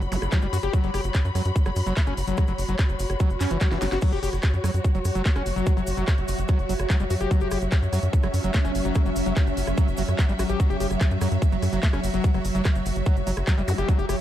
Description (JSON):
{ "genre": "psychedelic trance", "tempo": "146 BPM", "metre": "4/4", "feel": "straight", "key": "unclear", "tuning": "A4 = 444 Hz", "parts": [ { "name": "tight sequencer bass", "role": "bass", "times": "0.0-14.1 s", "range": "F#1 to F#2", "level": "-26 LUFS", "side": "equal", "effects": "none" }, { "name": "drum and bass drum kit", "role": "drums", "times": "0.0-14.2 s", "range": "crash cymbal, handclaps, hi-hat, rim click, snare drum", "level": "-34 LUFS", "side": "equal", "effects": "overdrive" }, { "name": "cabasa", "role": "percussion", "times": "0.0-14.2 s", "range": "none", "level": "-44 LUFS", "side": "left 3 dB", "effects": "none" }, { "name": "warm studio string section", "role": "texture", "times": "0.0-14.2 s", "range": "F#4 to B5", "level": "-32 LUFS", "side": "equal", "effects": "sidechain pumping" }, { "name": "screaming distorted acid line", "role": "riff", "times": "0.1-14.2 s", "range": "E3 to G4", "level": "-30 LUFS", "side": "moving between left 8 dB and right 6 dB", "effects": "distortion, chorus, auto-pan, sidechain pumping, dub echo" }, { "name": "zap and swell", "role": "sound effects", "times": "0.1-0.2, 3.4-4.0, 13.7-13.8 s", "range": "none", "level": "-36 LUFS", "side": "equal", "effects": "none" }, { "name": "electronic kick drum", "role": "drums", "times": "0.3-14.0 s", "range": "none", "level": "-21 LUFS", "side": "equal", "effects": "none" }, { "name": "evolving wavetable pad", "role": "sustained chords", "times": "4.8-14.2 s", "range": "F#3 to F#4", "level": "-31 LUFS", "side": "right 1 dB", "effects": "ensemble chorus, built-in reverb, sidechain pumping" } ], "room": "light reverb, digital ambience", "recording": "dark, warm production", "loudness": "-21 LUFS", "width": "side -12 dB against mid", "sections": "0.0-14.2 A section", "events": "swell 3.4-4.0; drum fill 3.7-4.0", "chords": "0.0 F#5" }